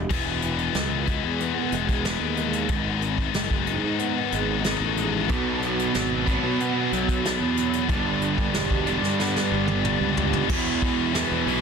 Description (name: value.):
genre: quiet-loud alternative rock.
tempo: 92 BPM.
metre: 4/4.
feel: straight.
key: E major.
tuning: A4 = 442 Hz.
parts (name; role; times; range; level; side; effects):
electric guitar through a small old amp; arpeggios; 0.0-10.5 s; G2 to B3; -30 LUFS; right 3 dB; ensemble chorus.
fuzz fingered electric bass; bass; 0.0-11.6 s; E1 to B2; -29 LUFS; equal; overdrive.
scooped high-gain guitar; riff; 0.1-11.6 s; G2 to E4; -26 LUFS; left 14 dB; distortion.
soft brush drum kit; drums; 0.1-11.6 s; crash cymbal, hi-hat, kick drum, snare drum, toms; -28 LUFS; equal; none.
distorted electric guitar; riff; 5.3-11.6 s; E2 to B3; -27 LUFS; right 12 dB; distortion.
room: light reverb.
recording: dense, heavily limited modern master.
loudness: -22 LUFS.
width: side -6 dB against mid.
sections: 0.1-10.5 A section; 10.5-11.6 B section.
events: drum fill 9.2-10.5.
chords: 0.1 E; 2.7 G#m; 5.3 Bm; 7.9 G; 10.5 E.